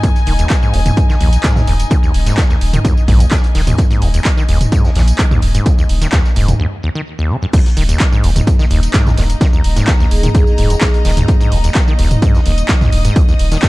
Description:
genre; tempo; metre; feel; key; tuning
acid house; 128 BPM; 4/4; straight; unclear; A4 = 440 Hz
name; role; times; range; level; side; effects
acid bass, saw; riff; 0.0-13.7 s; Db2 to Eb3; -18 LUFS; equal; ping-pong delay
electronic kick drum; drums; 0.0-13.7 s; none; -13 LUFS; equal; overdrive
punchy analog drum machine; drums; 0.0-13.7 s; crash cymbal, handclaps, hi-hat, tambourine, toms; -20 LUFS; right 1 dB; overdrive
vintage drum kit; drums; 0.0-13.7 s; hi-hat, shaker, snare drum; -32 LUFS; equal; none
rich chamber string section; texture; 0.0-13.7 s; Bb3 to Eb6; -25 LUFS; left 1 dB; sidechain pumping
warm sub bass; bass; 0.3-13.6 s; Eb1 to Bb1; -14 LUFS; equal; sidechain pumping
vibraphone with medium mallets; melody; 10.1-11.0 s; Ab4; -23 LUFS; equal; digital delay
room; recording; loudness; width
little or no reverb; dark, warm production, tape saturation; -10 LUFS; side -20 dB against mid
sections
0.0-7.5 A section; 7.5-13.7 B section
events
break 6.6-7.5; drop 7.5-13.7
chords
0.0 Eb5

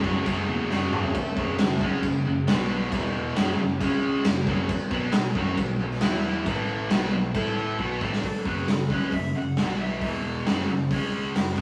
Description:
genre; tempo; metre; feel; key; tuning
hard rock; 135 BPM; 4/4; straight; F# minor; A4 = 437 Hz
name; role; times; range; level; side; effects
tonewheel organ; sustained chords; 0.0-8.2 s; none; barely audible; none; none
distorted electric guitar; riff; 0.0-1.1 s; F#3 to F#4; -37 LUFS; equal; none
high-gain distorted guitar; riff; 0.0-11.6 s; E2 to A4; -32 LUFS; equal; distortion
overdriven electric guitar; riff; 0.0-11.6 s; E2 to A4; -34 LUFS; equal; none
picked electric bass; bass; 0.0-11.6 s; E1 to A2; -36 LUFS; equal; none
raw garage drum kit; drums; 0.0-11.6 s; crash cymbal, hi-hat, kick drum, snare drum, toms; -28 LUFS; equal; none
lead guitar through a small cranked amp; melody; 8.2-10.0 s; A4 to F#5; -36 LUFS; equal; overdrive
room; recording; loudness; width
moderate studio reverb, RT60 0.5 s; rough rehearsal-room recording; -25 LUFS; mono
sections
0.0-1.1 A section; 1.1-8.2 B section; 8.2-11.6 C section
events
drum fill 0.7-1.1, 7.8-8.2; lead electric guitar solo 8.2-11.6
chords
0.0 F#m; 1.1 F#5; 2.5 B5; 2.9 E5; 3.4 F#5; 3.8 C#5; 4.2 F#5; 4.7 B5; 6.0 E5; 6.5 A5; 6.9 B5; 7.3 A5; 7.8 B5; 8.2 F#5; 9.6 B5; 10.0 E5; 10.5 F#5; 10.9 C#5

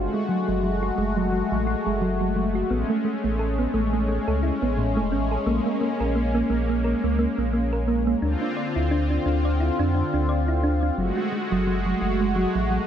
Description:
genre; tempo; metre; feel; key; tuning
IDM; 87 BPM; 4/4; swing 56% on 16ths; unclear; A4 = 440 Hz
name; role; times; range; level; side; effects
warm analog pad; sustained chords; 0.0-12.9 s; D3 to Gb4; -26 LUFS; left 1 dB; chorus
thumb-piano-like synth pluck; arpeggios; 0.0-12.8 s; A2 to D5; -26 LUFS; right 2 dB; chorus, cassette tape, tape echo
warm sub bass; bass; 0.0-12.8 s; E1 to F2; -26 LUFS; equal; tube saturation
room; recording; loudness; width
moderate lush hall reverb, RT60 3.0 s; nothing above 10.4 kHz; -21 LUFS; side -9 dB against mid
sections
0.0-12.9 A section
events
none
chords
0.0 Gbmadd9; 2.7 Amaj7; 5.5 Bbm7; 8.2 Dm7; 11.0 Gbmadd9

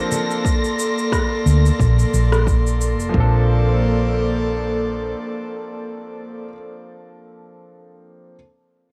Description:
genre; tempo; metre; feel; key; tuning
sunset chillout; 89 BPM; 4/4; swing 56% on 16ths; Bb major; A4 = 440 Hz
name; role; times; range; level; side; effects
clear concert grand piano; accompaniment; 0.0-8.4 s; F3 to A4; -31 LUFS; equal; cassette tape, analog delay, plate reverb
airy breathy pad; sustained chords; 0.0-6.5 s; Bb3 to C6; -26 LUFS; equal; chorus, vintage 12-bit sampler grit, cassette tape
wind-like tuned noise texture; texture; 0.0-3.2 s; Bb6; -33 LUFS; equal; built-in reverb, cassette tape, plate reverb
electronic shaker and rim click; drums; 0.1-3.1 s; none; -29 LUFS; equal; overdrive, cassette tape
electronic kick drum; drums; 0.4-3.3 s; none; -23 LUFS; equal; overdrive, cassette tape
hollow-body short-scale fingered electric bass; bass; 1.5-5.1 s; F1 to D2; -20 LUFS; equal; none
room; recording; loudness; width
moderate booth ambience, RT60 0.2 s; home recording on cassette; -19 LUFS; mono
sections
0.0-3.1 A section; 3.1-5.8 B section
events
none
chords
0.0 Bbmaj9

